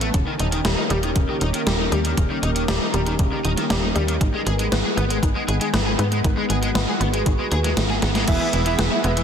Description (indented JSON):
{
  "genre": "synthwave",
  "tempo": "118 BPM",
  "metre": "4/4",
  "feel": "straight",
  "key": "unclear",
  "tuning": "A4 = 440 Hz",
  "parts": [
    { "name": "phased analog pad", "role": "sustained chords", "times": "0.0-9.2 s", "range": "D#3 to A5", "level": "-27 LUFS", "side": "equal", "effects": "phaser, chorus, sidechain pumping" },
    { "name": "overdriven semi-hollow guitar", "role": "riff", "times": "0.0-9.2 s", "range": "D#3 to G#4", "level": "-28 LUFS", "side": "left 2 dB", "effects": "ensemble chorus, low-pass filter, tape echo" },
    { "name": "tight sequencer bass", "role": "bass", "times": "0.0-9.2 s", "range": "D#1 to G#2", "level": "-23 LUFS", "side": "equal", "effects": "sidechain pumping" },
    { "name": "gated 80s digital drum machine", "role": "drums", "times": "0.0-9.2 s", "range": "crash cymbal, hi-hat, snare drum", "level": "-25 LUFS", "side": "equal", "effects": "gated reverb, gated reverb snare, overdrive" },
    { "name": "analog pluck", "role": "arpeggios", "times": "0.1-9.2 s", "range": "C#3 to B3", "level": "-29 LUFS", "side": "left 2 dB", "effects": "chorus, tape echo" },
    { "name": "electronic kick drum", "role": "drums", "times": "0.1-8.4 s", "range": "none", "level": "-22 LUFS", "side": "equal", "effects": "overdrive" },
    { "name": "analog synth brass", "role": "stabs", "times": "8.3-9.2 s", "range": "B3 to E5", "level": "-24 LUFS", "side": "right 4 dB", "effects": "chorus" }
  ],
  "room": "moderate lush hall reverb, RT60 2.5 s",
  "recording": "dense, heavily limited modern master",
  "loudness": "-18 LUFS",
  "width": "side -8 dB against mid",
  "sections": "0.0-8.3 A section",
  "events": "drum fill 7.9-8.3",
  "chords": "0.1 D#7; 4.2 G#m; 8.3 E"
}